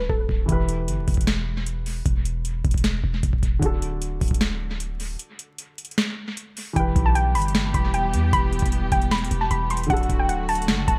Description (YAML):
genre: hip hop, trap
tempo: 153 BPM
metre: 4/4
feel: half-time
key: E minor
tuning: A4 = 439 Hz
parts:
  - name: soft round pluck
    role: melody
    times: 0.0-0.5, 6.8-11.0 s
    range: A4 to C6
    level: -28 LUFS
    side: equal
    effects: chorus, dub echo
  - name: dark baby grand piano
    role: accompaniment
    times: 0.0-11.0 s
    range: D3 to B4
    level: -32 LUFS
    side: equal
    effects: none
  - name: warm 808-style bass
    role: bass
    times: 0.0-11.0 s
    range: D1 to E2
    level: -27 LUFS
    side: equal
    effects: none
  - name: booming analog drum machine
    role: drums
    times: 0.1-11.0 s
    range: hi-hat, kick drum, snare drum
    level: -26 LUFS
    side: equal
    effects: overdrive, dub echo
  - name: dark studio string section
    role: sustained chords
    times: 6.8-11.0 s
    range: D3 to G4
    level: -33 LUFS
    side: equal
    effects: none
room: digital ambience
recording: echo-heavy mix, vinyl crackle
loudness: -23 LUFS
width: mono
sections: 0.0-6.8 A section; 6.8-11.0 B section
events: break 0.0-0.5, 5.2-6.8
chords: 0.5 Em; 3.6 D; 6.8 Em; 9.9 D